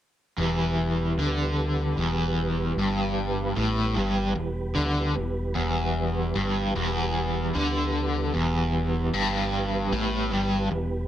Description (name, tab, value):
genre	rock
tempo	76 BPM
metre	4/4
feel	straight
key	E minor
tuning	A4 = 439 Hz
part	mellow tonewheel organ	sustained chords	0.4-11.1 s	E3 to B4	-32 LUFS	right 2 dB	chorus vibrato, fast rotary speaker
part	crunchy overdriven guitar	riff	0.4-11.0 s	E2 to D3	-25 LUFS	equal	tremolo
part	deep dub picked electric bass	bass	0.4-11.1 s	E1 to D2	-30 LUFS	equal	none
room	moderate spring reverb, RT60 1.1 s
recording	none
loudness	-24 LUFS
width	side -11 dB against mid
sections	0.4-11.1 A section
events	none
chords	0.4 Em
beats	| 0.39 1.18 1.98 2.77 | 3.57 4.37 5.16 5.96 | 6.75 7.54 8.34 9.13 | 9.92 10.71